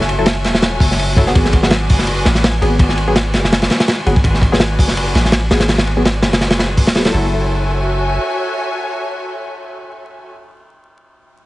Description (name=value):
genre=drum and bass, jungle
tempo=166 BPM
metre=4/4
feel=swing 54% on 16ths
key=F# minor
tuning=A4 = 440 Hz
part: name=rich symphonic string section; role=sustained chords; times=0.0-10.3 s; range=F#4 to G#5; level=-22 LUFS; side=equal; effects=none
part: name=band-passed chord stab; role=stabs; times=0.0-10.3 s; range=F#3 to A4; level=-21 LUFS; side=left 1 dB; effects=chorus, dub echo
part: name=long sustained 808-style bass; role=bass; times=0.0-8.2 s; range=D1 to A1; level=-18 LUFS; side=equal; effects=tube saturation
part: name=crunchy breakbeat drum kit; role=drums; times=0.0-7.1 s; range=hi-hat, kick drum, ride cymbal, snare drum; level=-14 LUFS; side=equal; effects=none
room=small room ambience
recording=heavily compressed radio sound, vinyl crackle, nothing above 10.9 kHz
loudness=-12 LUFS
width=side -18 dB against mid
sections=0.0-7.1 A section; 7.1-10.0 B section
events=filter sweep on 808-style bass 0.0-7.1; filter sweep on synth stab 0.0-7.1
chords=0.0 F#m7; 1.4 G#m7b5; 7.1 F#m7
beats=0.27 0.63 0.99 | 1.35 1.71 2.07 2.44 | 2.80 3.16 3.52 3.88 | 4.24 4.60 4.97 5.33 | 5.69 6.05 6.41 6.77 | 7.13 7.50 7.86 8.22 | 8.58 8.94 9.30 9.66